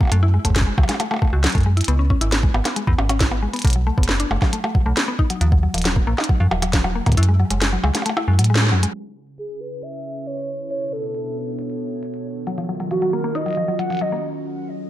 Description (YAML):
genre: IDM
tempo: 136 BPM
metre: 4/4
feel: straight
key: unclear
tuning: A4 = 440 Hz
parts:
  - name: mallet-like synth pluck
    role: arpeggios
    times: 0.0-8.9, 12.5-14.2 s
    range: E#3 to F#4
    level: -25 LUFS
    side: left 3 dB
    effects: chorus, tape echo
  - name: electronic kick drum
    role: drums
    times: 0.0-7.2 s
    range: none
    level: -18 LUFS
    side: equal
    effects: none
  - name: glitchy drum kit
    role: drums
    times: 0.0-14.0 s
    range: crash cymbal, hi-hat, percussion blips, snare drum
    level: -23 LUFS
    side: right 1 dB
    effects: tape echo
  - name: metallic FM bass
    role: bass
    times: 0.1-8.9 s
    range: D#1 to A2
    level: -18 LUFS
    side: equal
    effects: none
  - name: warbly tape-like pad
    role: sustained chords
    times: 9.6-14.9 s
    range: B2 to E5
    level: -28 LUFS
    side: right 2 dB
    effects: chorus, built-in reverb, sidechain pumping
  - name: warbly nostalgic lead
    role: melody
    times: 9.4-14.2 s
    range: F#4 to F#5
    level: -26 LUFS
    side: right 1 dB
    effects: chorus, dub echo
room: light reverb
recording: low-pass filter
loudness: -17 LUFS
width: side -14 dB against mid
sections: 0.0-8.9 A section; 8.9-14.9 B section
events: kick drops out 7.2-8.9; band accent 8.6; filter sweep 8.9-14.9; break 14.2-14.9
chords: 0.1 F#madd9; 1.9 C#m7; 3.6 B7(no3); 5.2 D#madd9; 7.2 F#madd9; 8.9 C#m7; 10.7 Bm9; 12.2 D#m9; 14.2 F#madd9